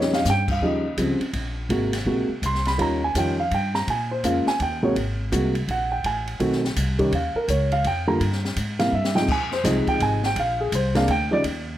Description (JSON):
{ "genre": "jazz piano trio", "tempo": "166 BPM", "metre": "3/4", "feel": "swing 64% on 8ths", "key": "Eb mixolydian", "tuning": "A4 = 440 Hz", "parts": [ { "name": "dark concert grand piano", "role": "melody", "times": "0.0-11.4 s", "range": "C3 to C6", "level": "-22 LUFS", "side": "right 1 dB", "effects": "none" }, { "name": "upright bass", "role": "bass", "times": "0.0-11.8 s", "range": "Ab1 to Bb2", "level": "-26 LUFS", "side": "equal", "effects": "none" }, { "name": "open jazz drum kit", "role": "drums", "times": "0.0-11.5 s", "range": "crash cymbal, hi-hat, kick drum, ride cymbal, snare drum", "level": "-30 LUFS", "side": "left 2 dB", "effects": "none" } ], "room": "light reverb", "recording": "none", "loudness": "-20 LUFS", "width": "side -13 dB against mid", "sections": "0.6-11.8 A section", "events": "drum fill 0.0, 8.9-9.3; grand piano solo 0.0-11.8", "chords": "0.0 Eb9; 1.7 Ab9; 2.8 Eb9; 3.9 Bbm7; 4.6 Eb7; 5.0 Ab9; 6.0 Adim; 7.1 Eb9; 8.2 Gm; 8.9 C; 9.3 Fm7; 10.4 Bb9" }